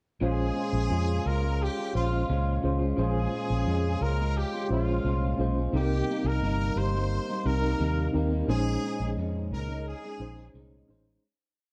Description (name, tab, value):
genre	indie pop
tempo	87 BPM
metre	4/4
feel	straight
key	Bb dorian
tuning	A4 = 440 Hz
part	electric guitar at the edge of break-up	accompaniment	0.2-11.2 s	Bb2 to F4	-35 LUFS	equal	lush chorus, warbly pitch drift
part	reed electric piano	accompaniment	0.2-11.3 s	C4 to C5	-36 LUFS	equal	fast tremolo, cassette tape, plate reverb
part	vintage muted fingered electric bass	bass	0.2-11.2 s	G1 to F2	-30 LUFS	equal	none
part	brilliant trumpet	melody	0.3-10.5 s	F4 to C5	-37 LUFS	equal	ensemble chorus, plate reverb, tape echo
room	moderate studio ambience, RT60 0.5 s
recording	dark, warm production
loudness	-28 LUFS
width	mono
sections	0.2-11.2 A section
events	fade-out 8.5-11.2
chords	0.2 Bbm7; 5.7 Cm7; 8.5 Bbm11